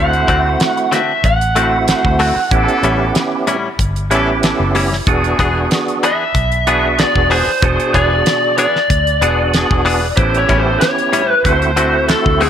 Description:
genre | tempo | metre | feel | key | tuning
straight-eighth soul blues | 94 BPM | 4/4 | swing 53% on 16ths | unclear | A4 = 439 Hz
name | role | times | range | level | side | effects
lead guitar through a small cranked amp | melody | 0.0-12.5 s | G#4 to F#5 | -16 LUFS | right 1 dB | overdrive
percussive tonewheel organ | accompaniment | 0.0-12.5 s | B2 to G#4 | -18 LUFS | right 3 dB | slow rotary speaker, chorus vibrato
clear horn section | sustained chords | 0.0-12.4 s | C#4 to C5 | -25 LUFS | left 1 dB | none
vintage muted fingered electric bass | bass | 0.0-12.5 s | E1 to D2 | -19 LUFS | equal | none
damped 70s drum kit | drums | 0.1-12.5 s | hi-hat, kick drum, snare drum | -18 LUFS | equal | none
direct-recorded clean electric guitar | stabs | 0.3-12.5 s | A2 to G#4 | -20 LUFS | left 4 dB | spring reverb
room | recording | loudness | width
light reverb | none | -12 LUFS | side -9 dB against mid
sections
0.0-12.5 A section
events
none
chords
0.0 D7; 2.5 A7; 5.1 E7; 10.2 A7; 11.5 D7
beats
0.60 1.24 1.88 | 2.52 3.15 3.79 4.43 | 5.07 5.71 6.35 6.99 | 7.62 8.26 8.90 9.54 | 10.18 10.81 11.45 12.09

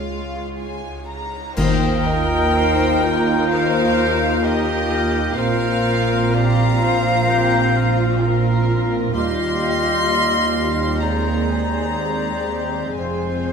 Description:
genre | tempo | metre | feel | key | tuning
cinematic, emotional film score for orchestra | 63 BPM | 4/4 | rubato | Eb major | A4 = 439 Hz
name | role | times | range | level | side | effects
warm symphonic violin section | melody | 0.0-13.5 s | F4 to Bb5 | -29 LUFS | left 5 dB | none
warm symphonic violin section | second line | 0.0-13.5 s | Db5 to C6 | -25 LUFS | left 1 dB | none
dark symphonic viola section | accompaniment | 0.0-13.5 s | G3 to F4 | -26 LUFS | right 3 dB | none
warm French horn section | sustained chords | 0.0-13.5 s | G3 to F4 | -27 LUFS | left 6 dB | none
dark studio double bass section | bass | 0.0-13.5 s | F1 to Eb2 | -24 LUFS | right 5 dB | none
rich symphonic cello section | bass | 0.0-13.5 s | Eb2 to F4 | -26 LUFS | right 2 dB | none
silver concert flute | second line | 1.6-13.5 s | G4 to F5 | -25 LUFS | left 3 dB | none
warm clarinet | second line | 1.6-13.5 s | G4 to Eb5 | -30 LUFS | left 2 dB | none
warm oboe | second line | 1.6-13.5 s | C5 to G5 | -28 LUFS | equal | none
clash cymbals and concert bass drum | percussion | 1.6-3.5 s | none | -28 LUFS | left 1 dB | none
timpani | percussion | 1.6-3.0 s | Eb3 | -23 LUFS | left 3 dB | none
room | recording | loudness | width
moderate scoring stage reverb, RT60 1.8 s | none | -16 LUFS | side -6 dB against mid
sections
0.0-1.6 A section; 1.6-13.5 B section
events
band accent 1.6-2.5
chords
0.0 Db; 1.6 Ebadd9; 5.4 Bbsus2; 9.1 Ebadd9; 11.0 Ab/Eb; 13.0 Fm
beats
0.58 | 1.57 2.54 3.50 4.43 | 5.37 6.35 7.29 8.21 | 9.14 10.08 11.02 11.98 | 12.95

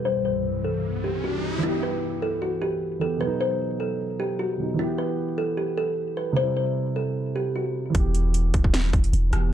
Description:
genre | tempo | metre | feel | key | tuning
hip hop, trap | 152 BPM | 4/4 | half-time | E harmonic minor | A4 = 440 Hz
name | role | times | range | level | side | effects
glassy FM pad | sustained chords | 0.0-1.6 s | C2 to E3 | -31 LUFS | left 1 dB | ensemble chorus, built-in reverb, low-pass filter
kalimba | melody | 0.1-7.7 s | E4 to C5 | -26 LUFS | left 2 dB | low-pass filter
riser | sound effects | 0.4-1.6 s | none | -34 LUFS | right 1 dB | none
dark baby grand piano | accompaniment | 1.6-9.5 s | B2 to G4 | -28 LUFS | right 4 dB | low-pass filter
long sustained 808-style bass | bass | 7.9-9.5 s | D#1 to E1 | -21 LUFS | equal | none
trap drum kit | drums | 7.9-9.4 s | hi-hat, kick drum, rim click, snare drum | -23 LUFS | equal | overdrive
room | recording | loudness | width
little or no reverb | dark, warm production | -23 LUFS | side -10 dB against mid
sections
0.0-1.6 A section; 1.6-9.5 B section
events
filter sweep 0.0-1.6; riser 0.4-1.6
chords
0.1 C; 1.6 Em; 3.2 B; 4.8 Em; 6.4 C; 7.9 Em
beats
| 0.05 0.45 0.84 1.24 | 1.63 2.03 2.42 2.82 | 3.21 3.60 4.00 4.39 | 4.79 5.18 5.58 5.97 | 6.37 6.76 7.16 7.55 | 7.95 8.34 8.74 9.13 | 9.53

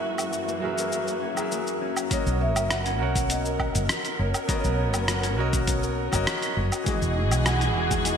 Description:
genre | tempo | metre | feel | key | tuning
sunset chillout | 101 BPM | 4/4 | straight | B major | A4 = 440 Hz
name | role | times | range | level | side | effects
vibraphone with soft mallets | melody | 0.0-8.2 s | C#5 to G#5 | -32 LUFS | right 1 dB | digital delay, shimmer reverb
dark symphonic string section | sustained chords | 0.0-8.2 s | F#2 to A#4 | -33 LUFS | right 1 dB | shimmer reverb
concert harp | arpeggios | 0.0-8.2 s | G#3 to F#4 | -33 LUFS | left 3 dB | ping-pong delay, shimmer reverb
dusty soul sampler-style drum kit | drums | 0.2-8.2 s | cabasa, hi-hat, rim click, woodblock | -30 LUFS | equal | gated reverb
clear grand piano | accompaniment | 0.6-8.2 s | E3 to F#5 | -30 LUFS | left 1 dB | auto-pan, ping-pong delay, shimmer reverb
electronic kick drum | drums | 2.1-8.0 s | none | -29 LUFS | equal | overdrive
woody fretless electric bass | bass | 2.3-8.2 s | E1 to B1 | -26 LUFS | equal | analog chorus
room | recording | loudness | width
moderate lush hall reverb, RT60 2.2 s | bright 1980s-style digital production | -23 LUFS | side -7 dB against mid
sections
0.0-2.1 A section; 2.1-8.2 B section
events
none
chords
0.0 F#7; 2.1 Bmaj9; 6.9 Emaj9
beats
0.33 0.92 1.52 | 2.11 2.71 3.30 3.89 | 4.49 5.08 5.67 6.27 | 6.86 7.46 8.05

